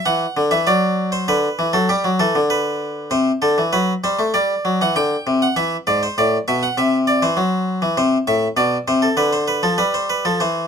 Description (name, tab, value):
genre	classical, baroque-style two-part invention for harpsichord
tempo	99 BPM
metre	4/4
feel	straight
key	unclear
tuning	A4 = 441 Hz
part	harpsichord	solo	0.0-10.7 s	G#2 to G5	-16 LUFS	equal	none
room	light reverb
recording	close, detailed microphones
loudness	-16 LUFS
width	side -7 dB against mid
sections	0.0-3.1 A section; 3.1-10.7 B section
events	none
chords	0.0 Dadd9; 0.7 D/F#; 1.9 G; 3.1 D7/C (rootless); 4.3 G5; 5.6 E7; 6.8 C; 8.0 Am; 9.2 Dm